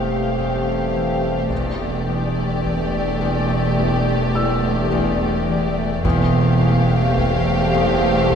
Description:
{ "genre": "cinematic, suspense film score", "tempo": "53 BPM", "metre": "4/4", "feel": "straight", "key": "unclear", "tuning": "A4 = 441 Hz", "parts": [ { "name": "dark studio violin section", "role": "melody", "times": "0.0-8.4 s", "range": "D5 to F5", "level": "-27 LUFS", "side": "left 3 dB", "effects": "none" }, { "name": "rich studio violin section", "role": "second line", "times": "0.0-8.4 s", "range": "G4", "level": "-28 LUFS", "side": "left 1 dB", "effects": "none" }, { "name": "rich studio viola section", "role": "accompaniment", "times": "0.0-8.4 s", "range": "A3", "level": "-28 LUFS", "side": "equal", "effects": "none" }, { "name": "clear trombone section", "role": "sustained chords", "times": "0.0-8.4 s", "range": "G3 to A3", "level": "-28 LUFS", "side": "right 2 dB", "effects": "none" }, { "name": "mellow French horn section", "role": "sustained chords", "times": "0.0-8.4 s", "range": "C4 to G4", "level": "-26 LUFS", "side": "left 2 dB", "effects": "none" }, { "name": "concert harp", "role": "riff", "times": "0.0-8.4 s", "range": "E2 to E3", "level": "-26 LUFS", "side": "left 2 dB", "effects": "none" }, { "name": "dark chamber double bass section", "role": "bass", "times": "0.0-8.4 s", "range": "E1", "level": "-23 LUFS", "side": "right 2 dB", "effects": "none" }, { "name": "rich chamber cello section", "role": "bass", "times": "0.0-8.4 s", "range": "E2", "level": "-24 LUFS", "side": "right 1 dB", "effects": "none" }, { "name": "pure sine sub bass", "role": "drone", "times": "0.0-8.4 s", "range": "E1", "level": "-32 LUFS", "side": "right 1 dB", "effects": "none" }, { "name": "felt-muted upright piano", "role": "texture", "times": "0.0-8.4 s", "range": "F5 to F6", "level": "-34 LUFS", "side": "left 1 dB", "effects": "none" }, { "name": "taiko ensemble", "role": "drums", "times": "1.5-8.4 s", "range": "none", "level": "-30 LUFS", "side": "equal", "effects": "none" }, { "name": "timpani", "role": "percussion", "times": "6.0-7.7 s", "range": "E2", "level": "-27 LUFS", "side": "equal", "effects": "none" } ], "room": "wet concert hall reverb, RT60 2.2 s", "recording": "recorded in a church or concert hall", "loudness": "-17 LUFS", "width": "side -7 dB against mid", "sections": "0.0-8.4 A section", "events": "none", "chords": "0.0 Fadd9/E; 1.5 Gsus2/E; 6.0 Fadd9/E" }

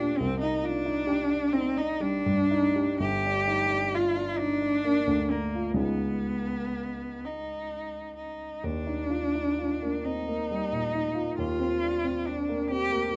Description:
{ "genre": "classical, impressionist duo for cello and grand piano", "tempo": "43 BPM (dotted quarters)", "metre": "6/8", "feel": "uneven beats, rubato", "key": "unclear", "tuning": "A4 = 439 Hz", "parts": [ { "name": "warm cello", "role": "melody", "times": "0.0-13.1 s", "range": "Bb3 to G4", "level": "-30 LUFS", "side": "equal", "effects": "none" }, { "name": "dark baby grand piano", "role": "accompaniment", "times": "0.0-13.2 s", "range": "G1 to G4", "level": "-32 LUFS", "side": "equal", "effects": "none" } ], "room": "moderate studio reverb, RT60 0.8 s", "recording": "dark, warm production", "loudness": "-28 LUFS", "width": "mono", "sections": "0.0-13.2 A section", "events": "none", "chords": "0.2 Cmadd9; 3.0 Gm7; 5.8 Db9; 8.6 Ebmaj9; 11.4 Cm11/Eb" }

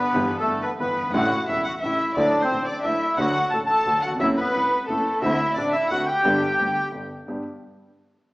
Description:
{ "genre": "tango", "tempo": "176 BPM", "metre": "3/4", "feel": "rubato", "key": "G major", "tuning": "A4 = 440 Hz", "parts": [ { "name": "bandoneon", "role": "melody", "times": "0.0-6.9 s", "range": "A3 to A5", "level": "-22 LUFS", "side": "equal", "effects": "none" }, { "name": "warm violin", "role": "second line", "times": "0.0-6.9 s", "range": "A4 to A5", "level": "-28 LUFS", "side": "left 1 dB", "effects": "none" }, { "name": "warm concert grand piano", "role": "accompaniment", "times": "0.1-7.4 s", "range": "E1 to G4", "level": "-27 LUFS", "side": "equal", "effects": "none" }, { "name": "clear double bass", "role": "bass", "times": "0.1-7.4 s", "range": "E1 to D2", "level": "-32 LUFS", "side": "equal", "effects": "none" } ], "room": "wet large studio reverb, RT60 1.3 s", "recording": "band playing live in one room, small speaker sound", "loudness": "-20 LUFS", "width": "side -22 dB against mid", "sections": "0.0-7.3 A section; 7.3-8.3 B section", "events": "none", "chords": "0.1 Em/G; 1.2 A7; 2.2 Dadd9; 3.2 D; 4.2 F#m7b5; 5.2 D7; 6.2 G" }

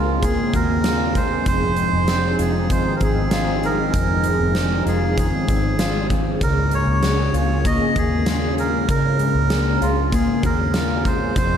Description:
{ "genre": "dream pop", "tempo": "97 BPM", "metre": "4/4", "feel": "straight", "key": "Db major", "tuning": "A4 = 439 Hz", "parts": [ { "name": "melodica", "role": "melody", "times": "0.0-11.6 s", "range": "F4 to Eb5", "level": "-24 LUFS", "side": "right 4 dB", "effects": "tape echo" }, { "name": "warm analog pad", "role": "sustained chords", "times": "0.0-11.6 s", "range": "F3 to Ab4", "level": "-26 LUFS", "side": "equal", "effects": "chorus" }, { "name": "mellow electric guitar", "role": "arpeggios", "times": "0.0-11.6 s", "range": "F2 to Ab4", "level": "-23 LUFS", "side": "left 2 dB", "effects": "analog chorus, tape echo, slapback echo" }, { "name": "vintage muted fingered electric bass", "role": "bass", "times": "0.0-11.6 s", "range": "F1 to Eb2", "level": "-24 LUFS", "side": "equal", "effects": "none" }, { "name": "huge arena drum kit", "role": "drums", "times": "0.2-11.5 s", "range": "hi-hat, kick drum, snare drum", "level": "-23 LUFS", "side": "equal", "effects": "none" } ], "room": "moderate scoring stage reverb, RT60 2.0 s", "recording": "big arena sound", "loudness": "-17 LUFS", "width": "side -8 dB against mid", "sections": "0.0-11.6 A section", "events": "none", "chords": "0.0 Db6; 1.5 Fm7; 6.4 Db6" }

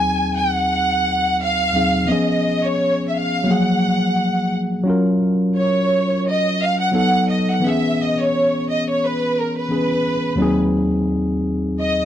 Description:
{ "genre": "soul", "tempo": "87 BPM", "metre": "4/4", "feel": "swing 54% on 16ths", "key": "F# major", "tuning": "A4 = 440 Hz", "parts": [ { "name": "warm studio violin section", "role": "melody", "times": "0.0-12.1 s", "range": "A#4 to G#5", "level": "-19 LUFS", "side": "right 1 dB", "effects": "none" }, { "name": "tine electric piano", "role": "accompaniment", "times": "0.0-12.1 s", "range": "D#2 to A#4", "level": "-19 LUFS", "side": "left 1 dB", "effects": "overdrive" } ], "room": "small room reverb", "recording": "dry, close 1970s-style studio recording", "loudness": "-16 LUFS", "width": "side -10 dB against mid", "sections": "0.0-4.9 A section; 4.9-12.1 B section", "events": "violin section solo 4.9-12.1", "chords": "0.0 G#7/D#; 2.1 C#7; 3.5 F#maj9; 4.9 F#maj7; 6.9 B7; 7.6 E6; 10.4 G#7/D#" }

